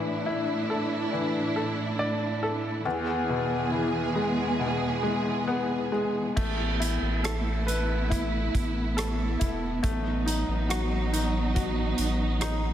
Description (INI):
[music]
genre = pop ballad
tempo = 69 BPM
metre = 4/4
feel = straight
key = unclear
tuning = A4 = 440 Hz
[part]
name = bright grand piano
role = accompaniment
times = 0.0-12.7 s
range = E2 to D5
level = -30 LUFS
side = left 3 dB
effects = none
[part]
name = warm studio string section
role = sustained chords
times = 0.0-12.7 s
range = E2 to G#4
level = -29 LUFS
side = right 2 dB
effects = none
[part]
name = saturated sub bass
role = bass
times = 6.4-12.7 s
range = E1 to A1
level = -29 LUFS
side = equal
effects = none
[part]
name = modern studio drum kit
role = drums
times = 6.4-12.6 s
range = crash cymbal, hi-hat, kick drum, rim click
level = -32 LUFS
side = right 1 dB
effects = none
[sound]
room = moderate lush hall reverb, RT60 3.4 s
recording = big arena sound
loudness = -25 LUFS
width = side -10 dB against mid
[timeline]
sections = 0.0-6.4 A section; 6.4-12.7 B section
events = none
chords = 0.0 Dsus2/A; 2.9 E; 6.4 Asus2; 9.8 B/A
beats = 0.26 1.13 1.99 | 2.86 3.72 4.59 5.48 | 6.36 7.24 8.10 8.97 | 9.83 10.70 11.56 12.41